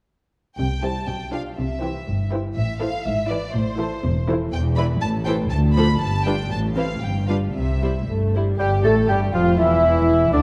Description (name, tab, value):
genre	quick classical-period movement for symphony orchestra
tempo	121 BPM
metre	2/4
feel	rubato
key	C major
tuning	A4 = 440 Hz
part	clear studio violin section	melody	0.6-10.4 s	D4 to B5	-32 LUFS	equal	none
part	warm studio cello section	bass	0.6-10.4 s	D2 to C3	-27 LUFS	equal	none
part	warm studio double bass section	bass	0.6-10.4 s	E1 to D2	-27 LUFS	equal	none
part	warm studio violin section	second line	0.8-10.4 s	D4 to D5	-32 LUFS	equal	none
part	dark chamber viola section	accompaniment	0.8-10.4 s	E3 to A4	-30 LUFS	equal	none
part	dark clarinet	second line	8.6-10.4 s	D4 to A4	-29 LUFS	equal	none
part	mellow concert flute	second line	8.6-10.4 s	D5 to A5	-30 LUFS	equal	none
part	warm oboe	second line	8.6-10.4 s	D5 to A5	-24 LUFS	equal	none
part	clear bassoon	accompaniment	8.6-10.4 s	D3 to A3	-29 LUFS	equal	none
part	mellow French horn section	sustained chords	8.6-10.4 s	D3 to A3	-27 LUFS	equal	none
room	wet concert hall reverb, RT60 1.8 s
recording	dark, warm production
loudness	-21 LUFS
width	mono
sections	0.6-8.6 A section; 8.6-10.4 A section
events	none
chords	0.6 C; 1.1 G7/B; 1.6 C; 2.6 Am; 3.1 E7/G#; 3.5 Am; 4.5 E5; 5.0 A5; 5.5 Dm; 6.0 G5; 6.5 Am; 7.0 G7(no3); 7.5 C; 8.6 Gsus2; 9.1 Fsus2; 9.6 Dsus2/E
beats	| 0.58 1.08 | 1.57 2.07 | 2.56 3.06 | 3.55 4.03 | 4.53 5.02 | 5.51 6.01 | 6.51 7.02 | 7.54 8.08 | 8.60 9.10 | 9.60 10.09